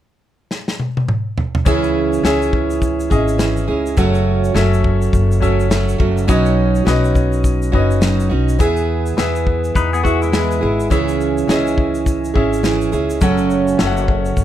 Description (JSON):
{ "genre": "acoustic pop", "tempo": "104 BPM", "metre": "4/4", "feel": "swing 60% on 16ths", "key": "C# minor", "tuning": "A4 = 441 Hz", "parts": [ { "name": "loose indie drum kit", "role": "drums", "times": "0.5-14.4 s", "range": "kick drum, shaker, snare drum, toms", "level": "-19 LUFS", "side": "left 1 dB", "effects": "none" }, { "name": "fingerpicked plugged-in steel-string acoustic guitar", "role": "accompaniment", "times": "1.7-14.4 s", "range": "F#2 to G#4", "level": "-18 LUFS", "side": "right 5 dB", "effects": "none" }, { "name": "warm baby grand piano", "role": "accompaniment", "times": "1.7-14.4 s", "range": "B3 to F#5", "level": "-22 LUFS", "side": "left 6 dB", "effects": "none" }, { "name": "upright bass", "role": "bass", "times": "1.7-14.4 s", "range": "F#1 to E2", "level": "-19 LUFS", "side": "left 1 dB", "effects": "none" }, { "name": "pedal steel guitar", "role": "second line", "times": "9.8-10.9 s", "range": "G#3 to B4", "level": "-20 LUFS", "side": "left 6 dB", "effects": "none" } ], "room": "light reverb", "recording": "none", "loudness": "-14 LUFS", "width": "side -11 dB against mid", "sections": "0.0-1.7 A section; 1.7-14.4 B section", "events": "drum fill 0.5-1.7", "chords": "0.0 N.C.; 1.7 C#m; 4.0 F#m; 6.3 Badd9; 8.6 E; 10.9 C#m; 13.2 F#m", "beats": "0.51 1.09 | 1.66 2.24 2.82 3.40 | 3.97 4.55 5.13 5.71 | 6.29 6.86 7.44 8.02 | 8.60 9.18 9.75 10.33 | 10.91 11.49 12.06 12.64 | 13.22 13.80 14.37" }